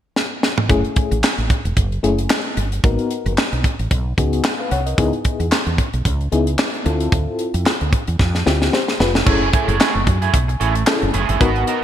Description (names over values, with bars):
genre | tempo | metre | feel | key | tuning
early-eighties boogie funk | 112 BPM | 4/4 | swing 56% on 16ths | F# dorian | A4 = 441 Hz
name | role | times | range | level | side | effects
tight funk drum kit | drums | 0.2-11.8 s | crash cymbal, handclaps, hi-hat, kick drum, snare drum, toms | -18 LUFS | equal | gated reverb
FM electric piano with tremolo | accompaniment | 0.7-11.8 s | A3 to F#5 | -22 LUFS | left 4 dB | none
woody fretless electric bass | bass | 0.7-11.6 s | E1 to F#2 | -20 LUFS | right 1 dB | analog chorus
electric guitar at the edge of break-up | riff | 9.3-11.8 s | A3 to B4 | -20 LUFS | right 6 dB | analog chorus
room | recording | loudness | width
light reverb, small room ambience | bright 1980s-style digital production | -16 LUFS | side -10 dB against mid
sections
0.7-9.3 A section; 9.3-11.8 B section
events
drum fill 0.2-0.7, 8.2-9.3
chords
0.0 N.C.; 0.7 F#m9; 2.8 G#m9; 5.0 C#m9; 6.9 Dm9; 9.3 F#m9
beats
0.16 | 0.69 1.23 1.77 2.30 | 2.84 3.37 3.91 4.45 | 4.98 5.52 6.05 6.59 | 7.12 7.66 8.20 8.73 | 9.27 9.80 10.34 10.87 | 11.41